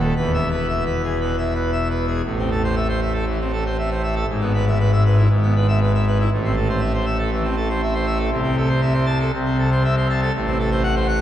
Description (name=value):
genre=classical, organ toccata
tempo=118 BPM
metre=4/4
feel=straight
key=A minor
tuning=A4 = 438 Hz
part: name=pipe organ, full organ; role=solo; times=0.0-11.2 s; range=D#1 to A5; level=-18 LUFS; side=equal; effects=none
room=wet church reverb, RT60 2.7 s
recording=heard from further back in the room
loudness=-18 LUFS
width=side -11 dB against mid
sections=0.0-2.2 A section; 2.2-11.2 B section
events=none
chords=0.1 E; 2.2 Am; 4.3 E/G#; 6.3 Am; 8.3 Am/C; 10.3 F#dim/A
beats=| 0.15 0.68 1.20 1.73 | 2.25 2.76 3.27 3.78 | 4.28 4.79 5.29 5.80 | 6.31 6.82 7.32 7.83 | 8.33 8.83 9.34 9.84 | 10.34 10.84